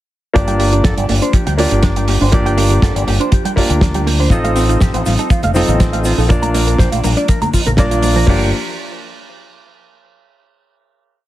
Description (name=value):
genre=nu-disco, nu disco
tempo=121 BPM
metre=4/4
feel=straight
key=G minor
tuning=A4 = 435 Hz
part: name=warm baby grand piano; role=accompaniment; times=0.3-8.5 s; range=Bb3 to Eb5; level=-18 LUFS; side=equal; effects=sidechain pumping, digital delay
part: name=electric guitar with an envelope filter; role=riff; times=0.3-8.5 s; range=C4 to Bb5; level=-23 LUFS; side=right 2 dB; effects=wide subtle chorus, digital delay
part: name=wide unison pluck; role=arpeggios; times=0.4-8.5 s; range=F3 to F4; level=-22 LUFS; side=right 2 dB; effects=sidechain pumping, ping-pong delay
part: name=fingered electric bass with an envelope filter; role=bass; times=0.4-8.5 s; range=F1 to D2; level=-16 LUFS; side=equal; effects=none
part: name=damped 70s drum kit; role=drums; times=0.4-8.4 s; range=crash cymbal, hi-hat, snare drum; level=-22 LUFS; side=right 2 dB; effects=none
part: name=kick drum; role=drums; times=0.4-8.4 s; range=none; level=-14 LUFS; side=equal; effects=none
part: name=tube shaker and congas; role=percussion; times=4.3-8.3 s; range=none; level=-25 LUFS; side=left 3 dB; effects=none
room=light reverb, studio ambience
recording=heavily compressed radio sound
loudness=-11 LUFS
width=side -14 dB against mid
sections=0.3-8.3 drop; 8.3-10.3 final chord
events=drop 0.3-8.3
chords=0.3 Gm7; 4.3 F7/A; 6.3 Bbmaj7; 8.3 G7(no3)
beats=| 0.35 0.84 1.34 1.84 | 2.33 2.83 3.32 3.82 | 4.32 4.81 5.31 5.80 | 6.30 6.79 7.29 7.79 | 8.28